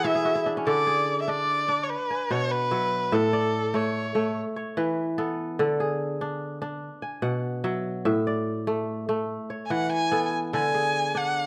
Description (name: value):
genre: west african traditional, West African string and xylophone music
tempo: 97 BPM (dotted quarters)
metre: 12/8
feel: straight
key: D lydian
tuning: A4 = 439 Hz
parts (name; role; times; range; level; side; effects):
- warm erhu; melody; 0.0-4.4, 9.7-11.5 s; A4 to G#5; -28 LUFS; equal; slapback echo
- kora; arpeggios; 0.0-11.5 s; A2 to G#5; -29 LUFS; equal; none
room: moderate recital hall reverb, RT60 1.4 s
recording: close, detailed microphones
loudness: -26 LUFS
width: mono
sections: 0.7-11.5 A section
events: kora fill 0.0-0.7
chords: 0.0 N.C.; 0.7 D5; 1.9 B5; 3.1 A; 4.4 E5; 5.6 D5; 6.8 B5; 8.1 A5; 9.3 E; 10.5 D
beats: 0.04 | 0.66 1.27 1.89 2.51 | 3.12 3.74 4.36 4.97 | 5.59 6.21 6.83 7.45 | 8.06 8.68 9.30 9.92 | 10.53 11.15